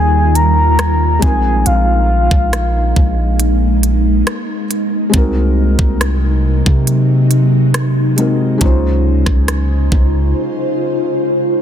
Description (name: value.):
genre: contemporary R&B.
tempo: 69 BPM.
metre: 4/4.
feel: straight.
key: unclear.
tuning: A4 = 440 Hz.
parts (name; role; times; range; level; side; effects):
soft octave-layered synth lead; melody; 0.0-3.4 s; F5 to Bb5; -17 LUFS; left 1 dB; chorus, tremolo, ping-pong delay.
felt-muted upright piano; accompaniment; 0.0-11.6 s; G3 to C5; -21 LUFS; left 1 dB; none.
ethereal airy pad; sustained chords; 0.0-11.6 s; C3 to C5; -18 LUFS; equal; ensemble chorus, built-in reverb.
long sustained 808-style bass; bass; 0.0-10.3 s; Bb1 to C3; -14 LUFS; equal; none.
trap drum kit; drums; 0.4-10.1 s; hi-hat, kick drum, rim click; -16 LUFS; equal; soft clipping on snare.
room: digital ambience.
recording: dense, heavily limited modern master.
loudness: -11 LUFS.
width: side -9 dB against mid.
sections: 0.0-11.6 A section.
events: break 10.4-11.6.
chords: 0.0 Ebadd9; 1.2 Bb9sus4; 5.1 Ab9/C; 8.6 Dbmaj9.